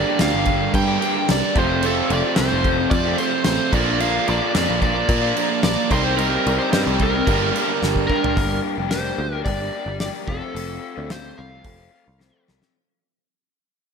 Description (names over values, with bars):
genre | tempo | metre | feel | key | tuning
classic rock | 110 BPM | 4/4 | straight | G minor | A4 = 440 Hz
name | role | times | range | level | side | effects
overdriven slide guitar | melody | 0.0-12.4 s | A4 to G5 | -25 LUFS | equal | slapback echo
fingerpicked twelve-string acoustic guitar | accompaniment | 0.0-12.7 s | G2 to Bb4 | -32 LUFS | right 2 dB | none
warm upright piano | accompaniment | 0.0-8.1 s | D4 to F5 | -34 LUFS | right 2 dB | none
cranked stack guitar | riff | 0.0-8.4 s | F2 to Eb4 | -26 LUFS | equal | overdrive, slapback echo
overdriven electric guitar | riff | 0.0-8.4 s | F2 to C4 | -25 LUFS | right 12 dB | slapback echo
raw garage guitar | riff | 0.0-12.7 s | F2 to G4 | -27 LUFS | left 10 dB | overdrive, slapback echo
picked electric bass | bass | 0.0-12.6 s | F1 to Bb2 | -25 LUFS | equal | none
damped 70s drum kit | drums | 0.2-12.7 s | crash cymbal, hi-hat, kick drum, snare drum, toms | -24 LUFS | equal | none
room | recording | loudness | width
moderate lush hall reverb, RT60 1.8 s | big arena sound | -17 LUFS | side -6 dB against mid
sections
0.0-8.4 A section; 8.4-12.7 B section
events
drum fill 7.8-8.4, 12.2-12.7; fade-out 8.4-12.7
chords
0.0 Gm; 1.5 F; 3.7 Bb; 5.9 Cm7; 7.3 Gm; 10.3 F